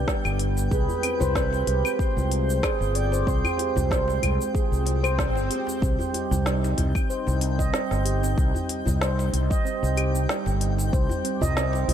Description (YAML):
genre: organic downtempo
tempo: 94 BPM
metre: 4/4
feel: swing 54% on 16ths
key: C harmonic minor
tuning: A4 = 440 Hz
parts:
  - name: warm analog pad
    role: sustained chords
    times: 0.0-11.9 s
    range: G3 to D6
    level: -33 LUFS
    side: right 2 dB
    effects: chorus, sidechain pumping
  - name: handpan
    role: arpeggios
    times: 0.0-11.9 s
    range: B3 to Eb5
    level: -29 LUFS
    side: right 2 dB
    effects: ping-pong delay
  - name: fretless electric bass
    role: bass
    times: 0.0-11.9 s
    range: G1 to C2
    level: -24 LUFS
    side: equal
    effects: sidechain pumping
  - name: twinkling granular texture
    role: texture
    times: 0.0-11.9 s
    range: G5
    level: -38 LUFS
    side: equal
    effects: built-in reverb
  - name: electronic kick drum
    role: drums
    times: 0.1-11.1 s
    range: none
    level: -26 LUFS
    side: equal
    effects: none
  - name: organic electronic drum kit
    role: drums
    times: 0.1-11.9 s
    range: cabasa, claves, hi-hat, snare drum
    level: -31 LUFS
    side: left 1 dB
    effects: none
  - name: djembe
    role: percussion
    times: 0.2-11.9 s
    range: none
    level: -34 LUFS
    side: left 2 dB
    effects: none
  - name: breathy flute-like synth lead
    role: melody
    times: 0.7-5.2 s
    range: B4 to D5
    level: -30 LUFS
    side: right 1 dB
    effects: lush chorus, digital delay
  - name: swell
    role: sound effects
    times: 4.8-5.8 s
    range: none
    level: -35 LUFS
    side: left 2 dB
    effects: none
room: light reverb, digital ambience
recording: none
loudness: -22 LUFS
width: side -9 dB against mid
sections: 0.0-5.8 A section; 5.8-11.9 A section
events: swell 4.8-5.8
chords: 0.0 G; 0.7 Fmadd9; 5.8 Cm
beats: 0.08 | 0.72 1.35 1.99 2.63 | 3.27 3.91 4.55 5.18 | 5.82 6.46 7.10 7.74 | 8.38 9.01 9.65 10.29 | 10.93 11.57